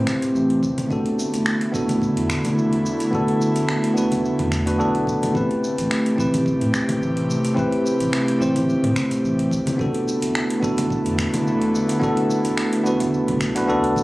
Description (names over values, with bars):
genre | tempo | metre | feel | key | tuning
sunset chillout | 108 BPM | 4/4 | swing 55% on 16ths | A dorian | A4 = 441 Hz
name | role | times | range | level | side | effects
bell-like tine electric piano | accompaniment | 0.0-14.0 s | B3 to C5 | -21 LUFS | equal | auto-pan, digital delay
airy breathy pad | sustained chords | 0.0-14.0 s | C3 to G4 | -23 LUFS | equal | chorus
warm sub bass | bass | 0.0-13.8 s | E1 to A2 | -29 LUFS | equal | none
electronic kick drum | drums | 0.1-14.0 s | none | -29 LUFS | equal | studio reverb
smooth R&B drum kit | drums | 0.1-14.0 s | congas, finger snaps, hi-hat, shaker | -28 LUFS | equal | studio reverb
room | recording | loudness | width
light reverb | recorded on a phone in the room, club reverb, compression | -18 LUFS | side -19 dB against mid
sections
0.0-14.0 A section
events
none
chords
0.0 Am9; 0.9 E7sus4; 5.4 Am9; 9.8 E7sus4